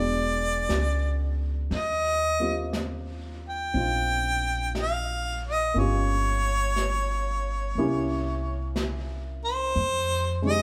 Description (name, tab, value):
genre	jazz ballad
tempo	60 BPM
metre	4/4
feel	swing 68% on 8ths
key	unclear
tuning	A4 = 443 Hz
part	clear harmonica	melody	0.0-10.6 s	C5 to G5	-29 LUFS	equal	none
part	warm baby grand piano	accompaniment	0.0-10.6 s	C3 to G4	-34 LUFS	equal	none
part	upright bass	bass	0.0-10.6 s	E1 to F2	-32 LUFS	equal	none
part	vintage brush drum kit	drums	0.7-10.6 s	brushed snare drum, hi-hat, snare drum	-38 LUFS	equal	none
room	moderate large studio reverb, RT60 1.2 s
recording	band playing live in one room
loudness	-27 LUFS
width	mono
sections	0.0-10.6 A section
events	none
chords	0.0 E9; 1.7 Eb69; 5.8 Gm7b5; 7.8 C7b9; 9.7 Fm9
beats	0.69 | 1.71 2.73 3.74 4.75 | 5.75 6.76 7.75 8.75 | 9.75